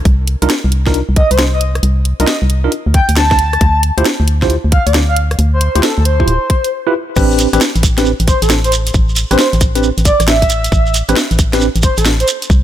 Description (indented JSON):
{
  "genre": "UK garage, two-step garage",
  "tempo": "135 BPM",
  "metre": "4/4",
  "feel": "swing 66% on 16ths",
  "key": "A minor",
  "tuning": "A4 = 440 Hz",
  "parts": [
    { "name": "organ-like FM bass", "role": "bass", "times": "0.0-12.6 s", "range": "D1 to D2", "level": "-14 LUFS", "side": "equal", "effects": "none" },
    { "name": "electronic kick drum", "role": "drums", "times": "0.1-12.6 s", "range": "none", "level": "-13 LUFS", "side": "equal", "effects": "none" },
    { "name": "garage drum kit", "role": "drums", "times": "0.1-12.5 s", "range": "crash cymbal, hi-hat, rim click, snare drum", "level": "-18 LUFS", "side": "equal", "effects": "none" },
    { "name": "tine electric piano", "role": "stabs", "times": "0.4-11.7 s", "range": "C4 to C5", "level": "-17 LUFS", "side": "right 1 dB", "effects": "medium stereo tremolo, ping-pong delay" },
    { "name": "breathy flute-like synth lead", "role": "melody", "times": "1.2-12.3 s", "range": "A4 to A5", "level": "-17 LUFS", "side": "equal", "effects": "tremolo, analog chorus, ping-pong delay" },
    { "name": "shekere", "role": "percussion", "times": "7.2-12.6 s", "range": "none", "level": "-21 LUFS", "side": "right 4 dB", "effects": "none" }
  ],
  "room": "little or no reverb",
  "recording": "none",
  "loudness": "-10 LUFS",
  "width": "side -11 dB against mid",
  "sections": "0.0-7.2 A section; 7.2-12.6 B section",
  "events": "break 6.7-7.2; drop 7.2-12.6",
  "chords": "0.0 N.C.; 2.7 D7(no3); 7.2 Am11",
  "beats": "| 0.05 0.50 0.94 1.39 | 1.83 2.28 2.72 3.17 | 3.61 4.05 4.50 4.94 | 5.39 5.83 6.28 6.72 | 7.17 7.61 8.05 8.50 | 8.94 9.39 9.83 10.28 | 10.72 11.16 11.61 12.05 | 12.50"
}